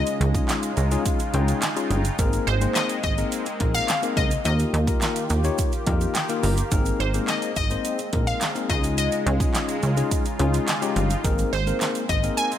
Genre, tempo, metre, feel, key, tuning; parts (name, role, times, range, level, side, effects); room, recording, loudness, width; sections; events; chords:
dance-pop; 106 BPM; 4/4; straight; Ab major; A4 = 439 Hz
glassy wavetable pluck; melody; 0.0-12.5 s; C5 to Ab5; -28 LUFS; left 2 dB; chorus, ping-pong delay
tine electric piano; accompaniment; 0.0-12.5 s; Ab3 to Bb5; -28 LUFS; left 6 dB
sweeping resonant pad; sustained chords; 0.0-12.6 s; Db3 to G4; -31 LUFS; equal; chorus, sidechain pumping
plucky analog bass; bass; 0.0-12.3 s; G1 to F2; -23 LUFS; right 1 dB; sidechain pumping
pop drum kit; drums; 0.1-12.6 s; handclaps, hi-hat, kick drum, snare drum; -26 LUFS; right 1 dB
tube shaker; percussion; 0.1-12.6 s; -37 LUFS; right 15 dB
little or no reverb; -20 LUFS; side -10 dB against mid
0.0-12.6 A section
tine electric piano fill 0.5-2.2, 5.6-6.7, 10.4-11.2
0.0 Dbadd9; 2.2 Abadd9; 4.5 Ebadd9; 6.7 Abadd9; 8.7 Dbadd9; 11.2 Abadd9